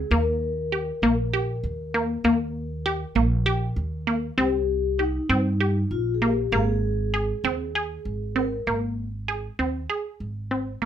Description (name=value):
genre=contemporary instrumental, chamber music in an uneven meter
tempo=196 BPM (eighths)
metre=7/8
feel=straight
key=Ab major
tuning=A4 = 441 Hz
part: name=vibraphone with soft mallets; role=second line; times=0.0-8.6 s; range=Eb4 to Bb4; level=-30 LUFS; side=left 4 dB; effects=none
part: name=upright bass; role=bass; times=0.0-10.9 s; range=Ab1 to G2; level=-27 LUFS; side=right 1 dB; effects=none
part: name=resonant blip pluck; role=arpeggios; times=0.1-10.9 s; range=Bb3 to Ab4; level=-24 LUFS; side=right 1 dB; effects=chorus
room=light reverb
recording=none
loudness=-23 LUFS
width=side -10 dB against mid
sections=0.0-8.7 A section; 8.7-10.9 B section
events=none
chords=0.1 Eb; 4.4 Cm; 6.5 Abadd9